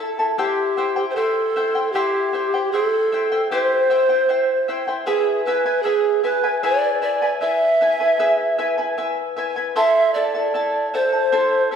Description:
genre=andean folk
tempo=77 BPM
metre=3/4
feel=straight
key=unclear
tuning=A4 = 440 Hz
part: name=charango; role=accompaniment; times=0.0-11.8 s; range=E4 to A5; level=-22 LUFS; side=left 2 dB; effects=none
part: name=polished pan flute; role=melody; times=0.4-11.8 s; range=G4 to E5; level=-18 LUFS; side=right 1 dB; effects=none
room=wet recital hall reverb, RT60 1.6 s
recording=recorded in a church or concert hall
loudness=-17 LUFS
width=side -7 dB against mid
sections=0.4-11.8 A section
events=none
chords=0.4 C; 5.1 E; 9.8 Am

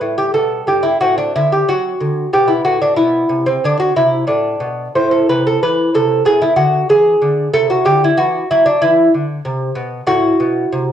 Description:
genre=classical, baroque-style dance for lute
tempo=93 BPM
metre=4/4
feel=uneven beats, rubato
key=unclear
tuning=A4 = 441 Hz
part: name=lute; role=solo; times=0.0-10.9 s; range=G2 to C5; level=-12 LUFS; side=equal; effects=cassette tape
room=moderate spring reverb, RT60 1.4 s, small room ambience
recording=home recording on cassette, studio reverb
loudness=-12 LUFS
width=side -9 dB against mid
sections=0.0-10.9 A section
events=none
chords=0.0 G; 1.0 D7/A; 2.3 Amadd9; 5.0 Am; 6.3 E7/B; 7.5 Bmadd11; 10.1 F#m7b5/A

